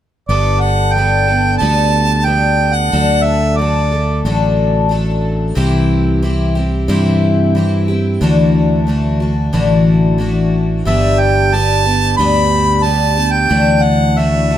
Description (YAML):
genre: folk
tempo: 91 BPM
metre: 4/4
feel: straight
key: G major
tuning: A4 = 440 Hz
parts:
  - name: warm harmonica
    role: melody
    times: 0.3-4.2, 10.9-14.6 s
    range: D5 to B5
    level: -15 LUFS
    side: right 3 dB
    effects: none
  - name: picked twelve-string acoustic guitar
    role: accompaniment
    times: 0.3-14.6 s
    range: G2 to A4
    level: -16 LUFS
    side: left 3 dB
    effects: none
  - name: fingered electric bass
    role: bass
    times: 0.3-14.6 s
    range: G1 to G2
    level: -15 LUFS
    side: right 1 dB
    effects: none
room: light reverb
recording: close, detailed microphones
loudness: -11 LUFS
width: side -11 dB against mid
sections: 0.3-14.6 A section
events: none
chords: 0.3 Gadd9; 2.9 D; 5.6 C; 8.2 Dadd9; 10.9 G; 13.5 Dadd9